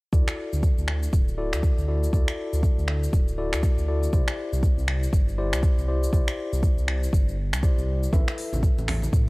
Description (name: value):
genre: afro house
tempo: 120 BPM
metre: 4/4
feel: swing 60% on 16ths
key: unclear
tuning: A4 = 441 Hz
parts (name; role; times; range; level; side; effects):
- tine electric piano; stabs; 0.1-9.3 s; E4 to E5; -32 LUFS; left 2 dB; sidechain pumping, low-pass filter, analog delay
- dark detuned saw bass; bass; 0.1-9.3 s; D1 to A2; -26 LUFS; equal; sidechain pumping
- afro-pop drum kit; drums; 0.1-9.3 s; cabasa, finger snaps, hi-hat; -32 LUFS; equal; none
- electronic kick drum; drums; 0.1-9.2 s; none; -21 LUFS; equal; none
- congas; percussion; 8.1-9.1 s; none; -33 LUFS; right 2 dB; none
room: digital ambience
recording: dry, gritty hardware recording, transformer saturation, cassette tape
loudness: -21 LUFS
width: side -24 dB against mid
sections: 0.1-9.3 A section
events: none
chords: 0.1 Dadd9; 4.1 Cadd9; 8.1 Asus2